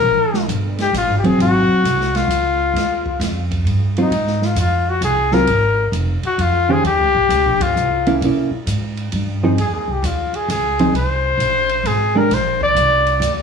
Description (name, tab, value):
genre	jazz, small-group swing and bop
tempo	132 BPM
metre	3/4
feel	swing 65% on 8ths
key	Eb mixolydian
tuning	A4 = 442 Hz
part	warm trumpet	melody	0.0-13.4 s	Eb4 to D5	-17 LUFS	left 3 dB	none
part	upright bass	bass	0.0-13.4 s	Eb1 to C3	-20 LUFS	equal	none
part	open jazz drum kit	drums	0.3-13.4 s	hi-hat, kick drum, ride cymbal, snare drum	-27 LUFS	right 2 dB	none
part	hollow-body jazz guitar	accompaniment	1.2-1.8, 4.0-12.3 s	Eb3 to C5	-17 LUFS	right 2 dB	none
room	light reverb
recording	small room reverb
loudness	-15 LUFS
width	side -6 dB against mid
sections	0.0-13.4 A section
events	band accent 7.5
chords	0.0 Eb (rootless); 1.4 Ab6; 2.8 Ebadd9; 4.1 Ab69; 6.9 Eb13; 8.2 C7b9; 9.6 Fm7; 12.3 Bbadd9